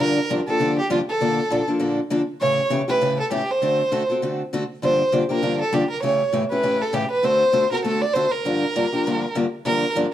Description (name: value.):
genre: jazz.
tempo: 199 BPM.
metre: 4/4.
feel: swing 58% on 8ths.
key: G minor.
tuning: A4 = 440 Hz.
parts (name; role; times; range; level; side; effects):
warm violin; melody; 0.0-9.9 s; F4 to D5; -21 LUFS; right 1 dB; plate reverb.
picked steel-string acoustic guitar; accompaniment; 0.0-10.1 s; G2 to A4; -22 LUFS; left 2 dB; none.
room: moderate studio reverb, RT60 0.8 s.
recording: dark, warm production.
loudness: -19 LUFS.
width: side -12 dB against mid.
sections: 0.0-9.6 A section.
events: none.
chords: 0.0 Gm7; 1.2 Bbmaj7; 2.4 A7; 3.6 D7; 4.8 Gm7; 6.0 A7; 7.2 D7; 8.4 Gm7.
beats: 0.29 0.59 0.89 | 1.19 1.50 1.80 2.10 | 2.40 2.70 3.00 3.31 | 3.61 3.91 4.21 4.51 | 4.82 5.12 5.42 5.72 | 6.02 6.32 6.62 6.93 | 7.23 7.53 7.83 8.13 | 8.43 8.74 9.04 9.34 | 9.64 9.94.